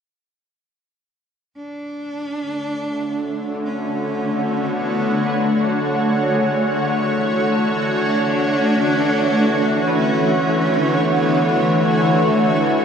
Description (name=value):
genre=ambient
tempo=57 BPM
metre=3/4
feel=straight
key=unclear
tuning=A4 = 437 Hz
part: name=shimmering ambient pad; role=sustained chords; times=2.7-12.8 s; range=D3 to C#5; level=-17 LUFS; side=equal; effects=chorus, built-in reverb
part: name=rich cello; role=melody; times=1.6-12.8 s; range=A3 to D4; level=-24 LUFS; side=equal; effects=none
part: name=clean electric guitar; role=arpeggios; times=3.5-12.8 s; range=D3 to C#5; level=-34 LUFS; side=left 1 dB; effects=none
room=wet concert hall reverb, RT60 2.4 s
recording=dark, warm production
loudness=-16 LUFS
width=side -7 dB against mid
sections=1.6-12.8 A section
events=fade-in on cello 1.6-12.8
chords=1.6 E13sus4